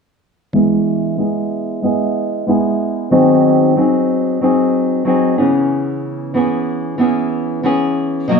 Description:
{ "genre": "indie pop", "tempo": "93 BPM", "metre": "4/4", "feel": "straight", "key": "unclear", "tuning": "A4 = 437 Hz", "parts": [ { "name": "nylon-string guitar", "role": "accompaniment", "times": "0.5-8.4 s", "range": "B2 to G#4", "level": "-13 LUFS", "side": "equal", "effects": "warbly pitch drift, low-pass filter" } ], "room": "wet studio reverb, RT60 0.8 s", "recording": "band playing live in one room", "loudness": "-13 LUFS", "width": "side -5 dB against mid", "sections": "0.5-8.4 A section", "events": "filter sweep on nylon-string guitar 0.5-8.4", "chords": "0.5 E; 3.1 G#7/D#; 5.4 C#m7" }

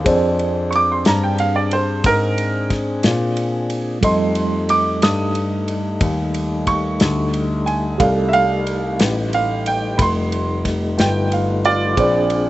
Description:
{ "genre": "slow blues", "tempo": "60 BPM (dotted quarters)", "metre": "12/8", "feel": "straight", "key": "unclear", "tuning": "A4 = 441 Hz", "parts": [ { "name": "mellow tine electric piano", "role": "accompaniment", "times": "0.0-12.5 s", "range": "G3 to F5", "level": "-24 LUFS", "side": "right 2 dB", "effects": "medium stereo tremolo, slapback echo" }, { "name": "dark concert grand piano", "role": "bass", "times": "0.0-12.5 s", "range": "F1 to Bb2", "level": "-21 LUFS", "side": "left 1 dB", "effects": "none" }, { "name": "tonewheel organ", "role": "sustained chords", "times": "0.1-12.5 s", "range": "G3 to Ab4", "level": "-25 LUFS", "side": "left 1 dB", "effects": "slow rotary speaker" }, { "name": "natural country drum kit", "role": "drums", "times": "0.1-12.5 s", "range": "kick drum, ride cymbal, snare drum", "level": "-22 LUFS", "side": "left 1 dB", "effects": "none" }, { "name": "warm upright piano", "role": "second line", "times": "0.7-12.5 s", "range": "F4 to Eb6", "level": "-20 LUFS", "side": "right 3 dB", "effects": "none" } ], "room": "little or no reverb", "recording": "recorded outdoors, with no room sound, nothing above 8.0 kHz", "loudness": "-16 LUFS", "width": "side -16 dB against mid", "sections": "0.0-12.5 A section", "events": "upright piano solo 0.0-12.5", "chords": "0.0 Bb9; 4.0 F9; 12.0 Bb9" }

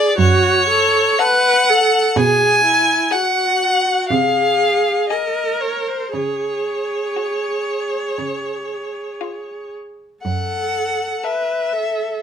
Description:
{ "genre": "classical, slow romantic movement for string quartet", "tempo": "60 BPM", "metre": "4/4", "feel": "rubato", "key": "F# minor", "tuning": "A4 = 440 Hz", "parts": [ { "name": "rich violin", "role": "second line", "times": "0.0-12.2 s", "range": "B#4 to G#5", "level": "-17 LUFS", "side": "left 2 dB", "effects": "none" }, { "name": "warm viola", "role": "accompaniment", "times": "0.0-12.2 s", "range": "E4 to B4", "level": "-20 LUFS", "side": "right 3 dB", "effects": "none" }, { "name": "rich cello", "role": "bass", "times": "0.2-11.1 s", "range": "F#2 to C#3", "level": "-21 LUFS", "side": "right 4 dB", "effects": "none" }, { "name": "clear violin", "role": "melody", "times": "1.2-12.0 s", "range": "E#4 to A4", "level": "-26 LUFS", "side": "left 9 dB", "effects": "none" } ], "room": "moderate large studio reverb, RT60 0.8 s", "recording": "minimal, uncompressed stereo recording", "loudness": "-15 LUFS", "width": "side -8 dB against mid", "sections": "0.0-12.2 A section", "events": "none", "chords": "0.2 F#m; 2.2 Eadd9/B; 4.1 G#/B#; 6.1 C#sus4; 10.2 F#m" }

